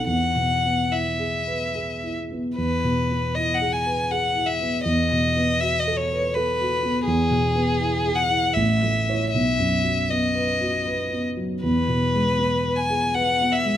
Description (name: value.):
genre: classical, romantic duo for violin and grand piano.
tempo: 71-84 BPM.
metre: 3/4.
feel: rubato.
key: E major.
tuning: A4 = 439 Hz.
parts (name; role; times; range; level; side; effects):
clear violin; melody; 0.0-13.8 s; G#4 to G#5; -23 LUFS; left 2 dB; none.
dark concert grand piano; accompaniment; 0.0-13.8 s; A1 to C#5; -23 LUFS; right 1 dB; none.
room: light reverb.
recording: close, detailed microphones.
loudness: -20 LUFS.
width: side -11 dB against mid.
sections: 0.0-2.6 A section; 2.6-13.8 A section.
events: none.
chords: 0.1 E; 4.9 B7/E; 7.1 E; 8.6 A; 9.3 B; 11.6 E.